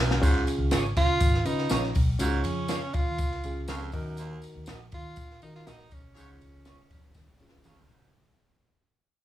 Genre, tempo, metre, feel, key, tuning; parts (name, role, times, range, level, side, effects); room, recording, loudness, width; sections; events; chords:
uptempo 1960s-style soul; 121 BPM; 4/4; straight; Db mixolydian; A4 = 440 Hz
raspy baritone saxophone; riff; 0.0-8.1 s; Eb2 to Ab2; -33 LUFS; right 5 dB
vintage muted fingered electric bass; bass; 0.0-8.1 s; Ab1 to Eb3; -30 LUFS; equal
compact cocktail drum kit; drums; 0.1-7.9 s; hi-hat, kick drum, ride cymbal, snare drum, splash cymbal, toms; -28 LUFS; equal
reed electric piano; accompaniment; 0.2-7.8 s; Db3 to Cb5; -32 LUFS; left 2 dB; overdrive
tambourine; percussion; 0.2-8.0 s; -43 LUFS; left 4 dB
electric guitar through a small old amp; stabs; 0.7-7.8 s; Db4 to Eb5; -34 LUFS; right 3 dB; analog chorus
breathy tenor saxophone; melody; 1.0-7.7 s; Db4 to F4; -31 LUFS; right 2 dB
warm horn section; second line; 6.1-6.3 s; F4 to Db5; -59 LUFS; left 1 dB
little or no reverb; studio ambience; -24 LUFS; side -13 dB against mid
0.0-8.1 A section
fade-out 0.0-8.1; drum fill 0.0, 7.2-8.1; band accent 6.2-8.1
0.2 Db; 3.9 Ebm; 6.2 Db